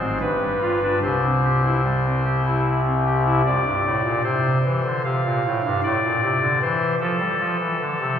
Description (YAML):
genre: classical, chorale-style piece for pipe organ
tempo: 75 BPM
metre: 3/4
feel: rubato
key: C major, F major from 3.5 s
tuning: A4 = 440 Hz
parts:
  - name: pipe organ, soft reed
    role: solo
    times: 0.0-8.2 s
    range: G1 to F5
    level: -19 LUFS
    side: left 1 dB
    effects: none
room: wet church reverb, RT60 3.2 s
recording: recorded in a church or concert hall, small room ambience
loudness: -19 LUFS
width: side -8 dB against mid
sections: 0.0-3.5 A section; 3.5-8.2 B section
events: none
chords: 0.2 G7; 1.0 C; 3.5 F; 5.8 F/A